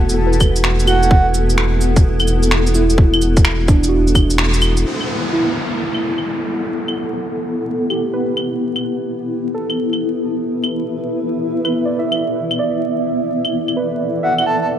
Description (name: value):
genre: future garage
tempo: 128 BPM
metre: 4/4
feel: swing 66% on 16ths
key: unclear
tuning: A4 = 440 Hz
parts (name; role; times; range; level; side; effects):
- muted felt-like synth keys; accompaniment; 0.0-14.8 s; D4 to E5; -22 LUFS; right 2 dB; chorus, sidechain pumping, ping-pong delay
- granular cloud pad; sustained chords; 0.0-14.8 s; E3 to F#5; -20 LUFS; left 1 dB; built-in reverb, vintage 12-bit sampler grit, sidechain pumping
- warm sub bass; bass; 0.0-4.8 s; E1; -16 LUFS; equal; sidechain pumping
- electronic shaker, cabasa, claves and finger snaps; drums; 0.1-14.4 s; none; -20 LUFS; left 1 dB; low-pass filter on snare, low-pass filter on perc, low-pass filter on room
- electronic kick drum; drums; 0.4-4.3 s; none; -12 LUFS; equal; none
- breathy flute-like synth lead; melody; 0.9-1.3, 14.2-14.7 s; F#5 to A5; -21 LUFS; right 2 dB; chorus, ping-pong delay
- downlifter; sound effects; 4.9-8.6 s; none; -25 LUFS; equal; none
room: moderate lush hall reverb, RT60 2.1 s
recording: vinyl crackle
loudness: -15 LUFS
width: side -10 dB against mid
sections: 0.0-4.9 A section; 4.9-14.8 B section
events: band accent 4.4; filter sweep on ambient pad 4.9-14.8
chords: 0.0 D/E; 4.9 Em; 12.4 D/E